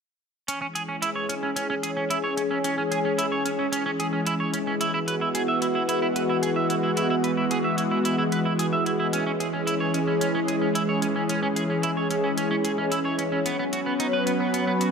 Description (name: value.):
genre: synthwave.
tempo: 111 BPM.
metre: 4/4.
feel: straight.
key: C# minor.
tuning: A4 = 441 Hz.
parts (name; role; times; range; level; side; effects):
lush unison pad; sustained chords; 0.7-14.9 s; E3 to B4; -24 LUFS; equal; chorus, phaser.
clean electric guitar; riff; 0.5-14.9 s; B3 to E5; -28 LUFS; right 3 dB; analog chorus, low-pass filter, diffuse ambient delay.
electronic hi-hat; drums; 0.5-14.9 s; none; -32 LUFS; left 1 dB; studio reverb.
room: wet plate reverb, RT60 2.2 s.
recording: dreamy mix soaked in reverb.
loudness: -22 LUFS.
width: side -6 dB against mid.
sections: 0.5-14.9 A section.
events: none.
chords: 0.5 C#m; 4.8 Eadd9; 9.1 C#m; 13.5 Bsus2.